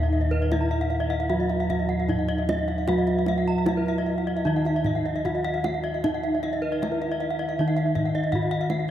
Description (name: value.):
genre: Balinese gamelan.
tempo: 76 BPM.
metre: 4/4.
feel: straight.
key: Eb pelog.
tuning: A4 = 440 Hz.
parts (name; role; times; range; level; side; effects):
gamelan-type bronze metallophone; melody; 0.0-8.9 s; Eb4 to Gb4-50c; -29 LUFS; equal; none.
gamelan-type bronze metallophone; accompaniment; 0.0-8.9 s; Eb3 to Gb3-50c; -30 LUFS; right 2 dB; none.
gamelan-type bronze metallophone; arpeggios; 0.0-8.9 s; Eb5 to Gb5-50c; -31 LUFS; left 4 dB; none.
gamelan-type bronze metallophone; arpeggios; 0.0-8.8 s; Cb5-40c to Bb5-45c; -31 LUFS; right 4 dB; none.
gamelan-type bossed gongs; bass; 0.0-8.9 s; Eb2 to Gb4-50c; -28 LUFS; left 1 dB; none.
kendang; percussion; 0.5-8.9 s; none; -34 LUFS; right 2 dB; none.
room: wet cathedral reverb, RT60 6.3 s.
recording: in a vast, echoing space.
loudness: -22 LUFS.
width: side -11 dB against mid.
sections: 0.0-8.9 A section.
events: none.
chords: none.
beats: 0.52 1.31 2.10 | 2.89 3.68 4.46 5.25 | 6.04 6.83 7.59 8.34.